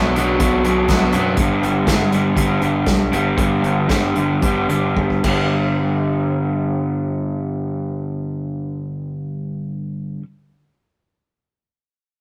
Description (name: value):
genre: indie rock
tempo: 104-123 BPM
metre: 4/4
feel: straight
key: G major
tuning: A4 = 440 Hz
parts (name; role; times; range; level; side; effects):
- crunchy overdriven guitar; riff; 0.0-10.2 s; G2 to D4; -21 LUFS; equal; none
- crunchy overdriven guitar; riff; 0.0-1.4 s; B2 to D4; -24 LUFS; equal; none
- growling picked electric bass; bass; 0.0-10.2 s; G1 to F#2; -27 LUFS; equal; overdrive
- unplugged drum kit; drums; 0.2-5.4 s; crash cymbal, hi-hat, kick drum, snare drum; -24 LUFS; equal; none
room: light reverb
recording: rough rehearsal-room recording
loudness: -19 LUFS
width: mono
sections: 0.0-5.5 A section; 5.5-10.1 B section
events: slowing down 1.4-5.5; drum fill 5.0-5.5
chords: 0.0 Bm; 1.4 G